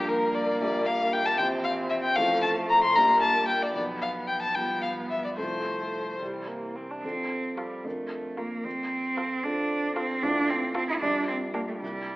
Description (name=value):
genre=quick classical-period movement for piano quartet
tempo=75 BPM (dotted quarters)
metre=6/8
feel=rubato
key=F major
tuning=A4 = 440 Hz
part: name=rich violin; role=melody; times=0.0-11.7 s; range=G4 to C6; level=-25 LUFS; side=left 2 dB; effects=none
part: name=rich cello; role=second line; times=0.0-12.2 s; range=E3 to E4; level=-32 LUFS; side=right 2 dB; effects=none
part: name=dark baby grand piano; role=accompaniment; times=0.0-12.2 s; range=A1 to D5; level=-33 LUFS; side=equal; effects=none
part: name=dark viola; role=accompaniment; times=0.0-11.7 s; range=G3 to F4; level=-34 LUFS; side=right 1 dB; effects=none
room=wet recital hall reverb, RT60 1.6 s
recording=AM radio sound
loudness=-24 LUFS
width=side -19 dB against mid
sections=0.0-7.0 A section; 7.0-12.2 B section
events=none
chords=0.0 Gm7; 0.6 Gm/Bb; 1.4 C7/Bb; 2.2 F/A; 3.0 Gm/Bb; 3.7 G7/B; 5.4 F/C; 6.2 C; 7.0 F; 7.8 Bb/F; 8.6 F; 10.2 F/A; 11.0 Gm/Bb